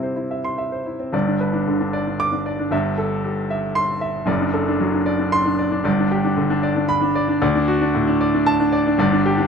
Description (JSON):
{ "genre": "classical, virtuoso piano study", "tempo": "115 BPM", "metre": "3/4", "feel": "rubato", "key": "G major", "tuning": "A4 = 440 Hz", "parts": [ { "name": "warm baby grand piano", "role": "solo", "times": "0.0-9.5 s", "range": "F#1 to D6", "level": "-18 LUFS", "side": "equal", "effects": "none" } ], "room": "light reverb", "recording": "close, detailed microphones", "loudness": "-18 LUFS", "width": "side -6 dB against mid", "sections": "0.0-1.1 A section; 1.1-9.5 B section", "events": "none", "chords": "0.0 C; 1.1 G; 2.7 Am7/G; 4.3 D7/F#; 5.8 G; 7.4 D", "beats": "0.02 0.58 | 1.13 1.67 2.20 | 2.72 3.24 3.76 | 4.28 4.81 5.33 | 5.85 6.37 6.89 | 7.42 7.95 8.46 | 8.98" }